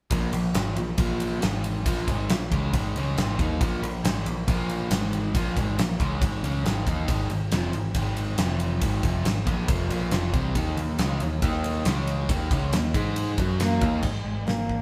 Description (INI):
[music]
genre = classic rock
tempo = 138 BPM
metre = 4/4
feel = straight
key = unclear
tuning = A4 = 440 Hz
[part]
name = overdriven semi-hollow guitar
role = riff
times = 0.1-14.0 s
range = F2 to Ab4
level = -32 LUFS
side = equal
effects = none
[part]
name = growling picked electric bass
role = bass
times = 0.1-14.8 s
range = F1 to Ab2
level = -30 LUFS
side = equal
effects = overdrive
[part]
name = huge arena drum kit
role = drums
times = 0.1-14.8 s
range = crash cymbal, hi-hat, kick drum, ride cymbal, snare drum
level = -29 LUFS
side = equal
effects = none
[part]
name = dark cello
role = melody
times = 13.6-14.8 s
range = Ab3 to Bb3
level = -30 LUFS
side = equal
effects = none
[sound]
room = light reverb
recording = band playing live in one room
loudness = -26 LUFS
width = mono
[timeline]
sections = 0.1-14.0 A section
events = none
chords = 0.1 Bb5; 1.4 Ab5; 1.9 Bb5; 4.9 Ab5; 5.3 Bb5; 7.1 Ab5; 8.4 F5; 8.8 Ab5; 10.6 Eb5; 11.9 Db5; 12.3 Eb5; 13.0 Ab5; 13.4 Gb5; 13.8 Eb5; 14.0 N.C.